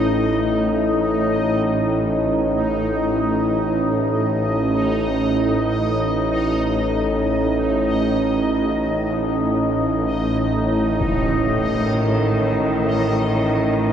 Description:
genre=dark ambient drone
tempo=free time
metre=none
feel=none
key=unclear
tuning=A4 = 440 Hz
part: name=bowed-like drone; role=drone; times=0.0-13.9 s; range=A1 to A2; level=-19 LUFS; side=right 1 dB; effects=built-in reverb
part: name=bubbling stepped-filter texture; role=texture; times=0.0-13.9 s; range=D#4 to D#5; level=-24 LUFS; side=left 2 dB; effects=chorus, built-in reverb
part: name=rich studio cello section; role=sustained chords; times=11.0-13.9 s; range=A2 to Eb3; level=-21 LUFS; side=equal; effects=none
part: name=impact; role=percussion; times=11.0-11.2 s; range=none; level=-30 LUFS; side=equal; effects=none
room=wet cathedral reverb, RT60 5.2 s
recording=none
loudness=-17 LUFS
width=side -8 dB against mid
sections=0.0-13.9 A section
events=none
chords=none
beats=free time

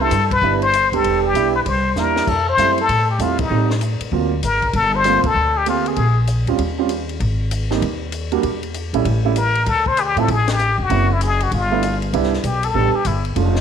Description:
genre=jazz, small-group swing and bop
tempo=195 BPM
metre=4/4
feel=swing 63% on 8ths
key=F major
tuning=A4 = 443 Hz
part: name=trumpet with plunger mute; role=melody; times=0.0-6.2, 9.4-13.3 s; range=Eb4 to C5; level=-18 LUFS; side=left 4 dB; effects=none
part: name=warm concert grand piano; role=accompaniment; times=0.0-13.5 s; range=F3 to G4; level=-22 LUFS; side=right 10 dB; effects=none
part: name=upright bass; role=bass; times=0.0-13.6 s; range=E1 to A2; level=-21 LUFS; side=equal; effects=none
part: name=compact cocktail drum kit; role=drums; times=0.1-13.6 s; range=crash cymbal, hi-hat, kick drum, ride cymbal, snare drum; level=-28 LUFS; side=left 5 dB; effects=none
room=moderate echo chamber reverb, RT60 1.4 s, small room ambience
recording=1960s-style stereo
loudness=-16 LUFS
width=side -8 dB against mid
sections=0.0-2.3 A section; 2.3-12.1 B section; 12.1-13.6 C section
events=band accent 0.3, 3.4, 5.2, 10.4; drum fill 2.0-2.3; muted trumpet solo 12.1-13.6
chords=0.0 Cmaj7; 1.7 C7; 2.3 Fmaj9; 3.5 Am7b5; 4.1 D7alt; 4.7 Gm11; 6.0 Bbmadd9; 6.6 Eb13; 7.2 Abmaj7sus2; 8.4 Edim; 9.1 A7; 9.7 Dm; 10.9 Gb7#11; 11.5 G7; 12.1 Cmaj7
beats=0.11 0.42 0.73 | 1.04 1.35 1.66 1.96 | 2.27 2.58 2.89 3.20 | 3.50 3.81 4.12 4.43 | 4.74 5.05 5.35 5.66 | 5.97 6.28 6.59 6.89 | 7.20 7.51 7.82 8.13 | 8.43 8.74 9.05 9.36 | 9.66 9.97 10.28 10.59 | 10.90 11.21 11.51 11.82 | 12.13 12.44 12.74 13.05 | 13.36

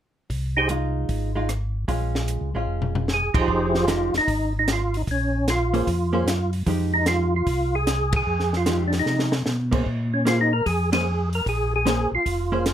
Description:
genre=soul jazz organ trio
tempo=150 BPM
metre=4/4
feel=swing 66% on 8ths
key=F minor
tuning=A4 = 438 Hz
part: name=mellow tonewheel organ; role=bass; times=0.3-12.7 s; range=F1 to C3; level=-25 LUFS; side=equal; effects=chorus vibrato, slow rotary speaker
part: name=compact cocktail drum kit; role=drums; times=0.3-12.7 s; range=crash cymbal, hi-hat, kick drum, ride cymbal, rim click, snare drum, toms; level=-27 LUFS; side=equal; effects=none
part: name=percussive tonewheel organ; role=melody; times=0.6-0.7, 3.1-12.7 s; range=F3 to C5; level=-23 LUFS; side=right 1 dB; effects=chorus vibrato, slow rotary speaker
part: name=hollow-body jazz guitar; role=accompaniment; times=0.7-12.6 s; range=F3 to C5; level=-27 LUFS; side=right 2 dB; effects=none
room=light reverb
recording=none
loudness=-20 LUFS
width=side -10 dB against mid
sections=0.3-3.5 A section; 3.5-12.7 B section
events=drum fill 2.7-3.1, 9.1-9.5; band accent 8.1, 10.9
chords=0.3 Fm7/C; 1.9 Bbm7; 3.5 Fm9; 5.1 Bbm9; 6.7 Fm9; 9.9 Bbm9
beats=| 0.29 0.69 1.08 1.48 | 1.88 2.28 2.68 3.08 | 3.48 3.88 4.28 4.67 | 5.07 5.47 5.87 6.27 | 6.67 7.07 7.47 7.86 | 8.26 8.66 9.06 9.46 | 9.86 10.26 10.65 11.05 | 11.45 11.85 12.24 12.64

